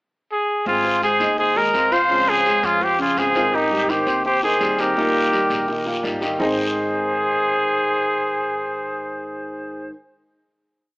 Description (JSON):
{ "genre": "latin, Cuban son and guajira", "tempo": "167 BPM", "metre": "4/4", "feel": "straight", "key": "Ab major", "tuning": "A4 = 440 Hz", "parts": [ { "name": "warm trumpet", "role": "melody", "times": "0.3-9.9 s", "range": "Eb4 to C5", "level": "-19 LUFS", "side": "equal", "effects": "none" }, { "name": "bright silver concert flute", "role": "second line", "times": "0.7-9.9 s", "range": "G4 to F5", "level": "-25 LUFS", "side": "equal", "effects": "none" }, { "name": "flamenco guitar", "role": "accompaniment", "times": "0.7-9.9 s", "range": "Ab2 to Ab4", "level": "-27 LUFS", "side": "equal", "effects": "none" }, { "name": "upright bass", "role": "bass", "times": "0.7-9.9 s", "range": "Ab1 to Ab2", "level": "-37 LUFS", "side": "equal", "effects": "none" }, { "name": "guiro", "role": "percussion", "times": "0.7-6.5 s", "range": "none", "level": "-31 LUFS", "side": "left 1 dB", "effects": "none" }, { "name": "dark concert grand piano", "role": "arpeggios", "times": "0.8-9.9 s", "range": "Bb2 to Eb5", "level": "-27 LUFS", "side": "equal", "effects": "none" } ], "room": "moderate large studio reverb, RT60 1.2 s", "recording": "AM radio sound", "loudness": "-17 LUFS", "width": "side -29 dB against mid", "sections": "0.0-0.7 pickup bar; 0.7-6.4 verse; 6.4-9.3 final chord", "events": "none", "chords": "0.0 N.C.; 0.7 Ab6; 2.1 Dbmaj7; 3.5 Abmaj7; 5.0 Eb; 6.4 Ab" }